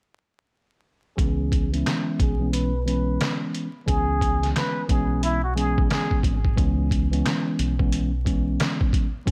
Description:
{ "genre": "hip hop, boom-bap hip-hop", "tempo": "89 BPM", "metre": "4/4", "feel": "swing 63% on 16ths", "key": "C# minor", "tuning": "A4 = 440 Hz", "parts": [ { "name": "trumpet with plunger mute", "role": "melody", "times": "1.2-6.2 s", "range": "E4 to B4", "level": "-32 LUFS", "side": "equal", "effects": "high-pass filter, low-pass filter, analog delay" }, { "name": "mellow tine electric piano", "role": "accompaniment", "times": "1.2-9.3 s", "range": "E3 to C#4", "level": "-29 LUFS", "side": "equal", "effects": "high-pass filter, low-pass filter" }, { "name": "deep dub fingered electric bass", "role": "bass", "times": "1.2-9.3 s", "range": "G#1 to C#2", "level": "-28 LUFS", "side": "equal", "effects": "none" }, { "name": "trip hop sampler-style drum kit", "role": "drums", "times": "1.2-9.3 s", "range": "handclaps, hi-hat, kick drum, snare drum", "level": "-26 LUFS", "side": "equal", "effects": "none" } ], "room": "little or no reverb", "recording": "vinyl crackle", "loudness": "-23 LUFS", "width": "mono", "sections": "1.2-6.6 A section; 6.6-9.3 B section", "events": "filter sweep 1.2-6.6", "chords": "1.2 C#m7" }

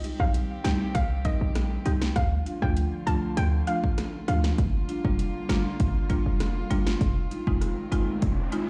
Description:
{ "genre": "dancehall", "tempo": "99 BPM", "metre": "4/4", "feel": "straight", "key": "C minor", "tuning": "A4 = 440 Hz", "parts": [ { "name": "buzzing marimba with medium mallets", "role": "accompaniment", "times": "0.0-8.7 s", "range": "F3 to Bb4", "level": "-34 LUFS", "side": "equal", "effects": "none" }, { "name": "dark chamber string section", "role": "sustained chords", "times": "0.0-8.7 s", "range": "D3 to G4", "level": "-39 LUFS", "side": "equal", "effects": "sidechain pumping" }, { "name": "deep house drum kit", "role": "drums", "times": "0.0-8.7 s", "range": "hi-hat, kick drum, rim click, snare drum", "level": "-31 LUFS", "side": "equal", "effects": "overdrive, vintage 12-bit sampler grit" }, { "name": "soft round pluck", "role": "melody", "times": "0.2-4.4 s", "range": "Eb5 to A5", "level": "-36 LUFS", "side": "equal", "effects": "chorus, tape echo" }, { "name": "short 808-style bass", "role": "bass", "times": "0.2-8.5 s", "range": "F1 to D2", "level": "-29 LUFS", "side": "equal", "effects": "none" }, { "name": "riser", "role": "sound effects", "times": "7.8-8.7 s", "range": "none", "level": "-41 LUFS", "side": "equal", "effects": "none" } ], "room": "digital ambience", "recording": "played on a big sound system in a bare room, stone room reverb", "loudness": "-26 LUFS", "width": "mono", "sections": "0.0-8.7 A section", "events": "riser 7.8-8.7", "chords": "0.0 Cm; 2.2 Dm; 4.6 Gm7; 7.0 Fm7" }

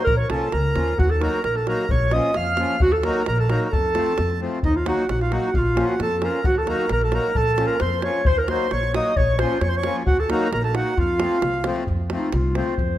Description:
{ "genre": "balkan folk, Balkan wedding band", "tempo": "132 BPM", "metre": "2/4", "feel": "straight", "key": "unclear", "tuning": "A4 = 440 Hz", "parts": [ { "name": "dark clarinet", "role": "melody", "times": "0.0-13.0 s", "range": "Eb4 to F5", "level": "-23 LUFS", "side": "equal", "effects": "none" }, { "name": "accordion", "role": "second line", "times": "0.0-11.7 s", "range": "Eb5 to F6", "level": "-30 LUFS", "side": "right 4 dB", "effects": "none" }, { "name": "accordion", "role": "accompaniment", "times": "0.0-12.7 s", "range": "F3 to Gb4", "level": "-27 LUFS", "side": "left 2 dB", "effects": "light tremolo tuning" }, { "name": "upright bass", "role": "bass", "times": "0.1-13.0 s", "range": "Bb1 to F2", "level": "-24 LUFS", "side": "equal", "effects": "none" }, { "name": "davul", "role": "percussion", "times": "0.1-12.9 s", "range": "none", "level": "-27 LUFS", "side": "equal", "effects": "none" } ], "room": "moderate recital hall reverb, RT60 1.6 s", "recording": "none", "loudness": "-19 LUFS", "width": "side -13 dB against mid", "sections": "0.0-4.6 A section; 4.6-11.9 A section; 11.9-13.0 B section", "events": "clarinet solo 11.9-13.0", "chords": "0.1 Bbm; 1.0 Ebm; 1.9 Bbm; 2.8 Ebm; 3.7 F; 4.6 Ebm; 5.5 Bbm; 6.4 Ebm; 7.4 Bbm; 8.3 Ebm; 9.2 Bbm; 10.1 Ebm; 11.0 F" }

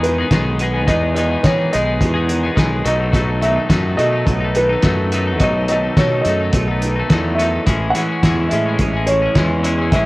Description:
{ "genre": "indie rock", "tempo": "106 BPM", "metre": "4/4", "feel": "straight", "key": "unclear", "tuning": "A4 = 440 Hz", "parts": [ { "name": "dark upright piano", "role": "melody", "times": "0.0-10.1 s", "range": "B4 to F#5", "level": "-20 LUFS", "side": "equal", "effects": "plate reverb" }, { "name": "crunchy overdriven guitar", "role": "riff", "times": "0.0-10.1 s", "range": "E2 to C#4", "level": "-24 LUFS", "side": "right 3 dB", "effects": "analog chorus" }, { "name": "twelve-string electric guitar", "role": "riff", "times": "0.0-10.1 s", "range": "D#3 to G#4", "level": "-22 LUFS", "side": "left 3 dB", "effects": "none" }, { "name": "fuzz fingered electric bass", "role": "bass", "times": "0.0-10.1 s", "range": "A1 to E3", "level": "-20 LUFS", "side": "equal", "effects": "overdrive" }, { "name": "cloth-damped thuddy drum kit", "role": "drums", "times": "0.0-10.1 s", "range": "hi-hat, kick drum, snare drum", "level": "-18 LUFS", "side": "equal", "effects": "none" } ], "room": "moderate studio ambience, RT60 0.5 s", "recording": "worn, warbling old tape, cassette tape, warbly pitch drift", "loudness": "-14 LUFS", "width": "side -20 dB against mid", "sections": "0.0-10.1 A section", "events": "none", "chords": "0.0 Emaj7; 2.9 B7; 7.7 Amaj7" }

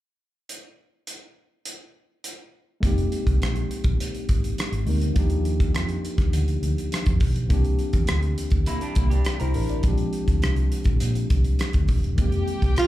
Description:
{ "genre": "lush 1970s-style soul", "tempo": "103 BPM", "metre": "4/4", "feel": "straight", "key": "F dorian", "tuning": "A4 = 440 Hz", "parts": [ { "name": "modern studio drum kit", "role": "drums", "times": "0.5-12.9 s", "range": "hi-hat, kick drum, rim click", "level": "-24 LUFS", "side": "equal", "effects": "none" }, { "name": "tine electric piano", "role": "accompaniment", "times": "2.8-12.9 s", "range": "Eb3 to D5", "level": "-29 LUFS", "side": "left 2 dB", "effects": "medium stereo tremolo, slapback echo" }, { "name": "vintage muted fingered electric bass", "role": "bass", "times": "2.8-12.9 s", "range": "Eb1 to Bb2", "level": "-24 LUFS", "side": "equal", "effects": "none" }, { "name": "electric guitar through a small old amp", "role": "riff", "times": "8.7-9.8 s", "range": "G3 to Bb4", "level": "-31 LUFS", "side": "right 2 dB", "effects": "slapback echo" }, { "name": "warm studio violin section", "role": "second line", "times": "12.2-12.9 s", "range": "G4 to G5", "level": "-34 LUFS", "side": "left 1 dB", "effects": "slapback echo" }, { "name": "breathy tenor saxophone", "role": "melody", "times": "12.8-12.9 s", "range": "F4", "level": "-18 LUFS", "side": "right 3 dB", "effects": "none" } ], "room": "little or no reverb", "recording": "live gig heard through the venue's PA, club reverb", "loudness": "-21 LUFS", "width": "side -15 dB against mid", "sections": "0.5-2.8 A section; 2.8-12.2 B section", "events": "none", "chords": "0.5 N.C.; 2.8 Fm11 (rootless); 5.2 Ebmaj9; 7.5 C9; 9.8 Bb13; 12.2 Fm11" }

